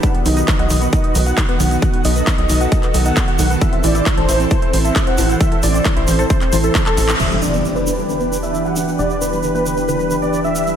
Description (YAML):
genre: uplifting trance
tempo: 134 BPM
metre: 4/4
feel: straight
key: E minor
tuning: A4 = 442 Hz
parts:
  - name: dense compressed supersaw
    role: melody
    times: 0.0-10.7 s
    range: A4 to F#5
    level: -22 LUFS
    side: right 1 dB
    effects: sidechain pumping, low-pass filter, analog delay
  - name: lush unison pad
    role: sustained chords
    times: 0.0-10.7 s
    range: D#3 to C5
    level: -21 LUFS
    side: right 1 dB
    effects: chorus, sidechain pumping
  - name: tight sequenced synth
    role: arpeggios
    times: 0.0-10.7 s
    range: D3 to A4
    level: -23 LUFS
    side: left 1 dB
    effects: chorus, phaser, sidechain pumping, analog delay
  - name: big-room dance drum kit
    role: drums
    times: 0.0-7.3 s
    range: crash cymbal, handclaps, hi-hat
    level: -24 LUFS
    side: equal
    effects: overdrive, sidechain pumping on hats, sidechain pumping on cymbals
  - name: electronic kick drum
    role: drums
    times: 0.0-6.8 s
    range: none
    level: -17 LUFS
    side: equal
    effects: overdrive
  - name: tube shaker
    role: percussion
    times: 0.0-10.8 s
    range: none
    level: -30 LUFS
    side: right 2 dB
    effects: none
  - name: tight sequencer bass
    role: bass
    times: 0.3-10.8 s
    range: E1 to B1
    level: -20 LUFS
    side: equal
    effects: sidechain pumping
  - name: clear grand piano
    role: second line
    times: 7.2-10.7 s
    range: B4 to F#5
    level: -27 LUFS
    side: equal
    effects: none
  - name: impact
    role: sound effects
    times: 7.2-9.0 s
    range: none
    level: -26 LUFS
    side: equal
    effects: none
room: moderate lush hall reverb, RT60 1.8 s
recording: dreamy mix soaked in reverb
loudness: -14 LUFS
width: side -9 dB against mid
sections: 0.0-7.2 A section; 7.2-10.8 B section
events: drum fill 6.9-7.2; band accent 7.1; impact 7.2-9.0; filter sweep on supersaw synth 7.2-10.8; filter sweep on synth arpeggio sound 7.2-10.8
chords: 0.0 B; 3.6 Am; 7.2 Em7